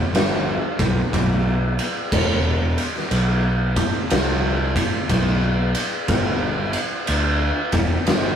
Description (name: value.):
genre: stoner and doom metal.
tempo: 61 BPM.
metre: 4/4.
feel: swing 66% on 8ths.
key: E minor.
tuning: A4 = 440 Hz.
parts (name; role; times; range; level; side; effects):
fuzz fingered electric bass; bass; 0.1-8.4 s; E1 to D2; -21 LUFS; equal; overdrive.
oversized low-tuned drum kit; drums; 0.1-8.4 s; crash cymbal, kick drum, ride cymbal, snare drum; -20 LUFS; equal; none.
room: light reverb.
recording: rough rehearsal-room recording, warm saturation.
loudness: -18 LUFS.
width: side -8 dB against mid.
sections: 0.0-8.4 A section.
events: none.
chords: none.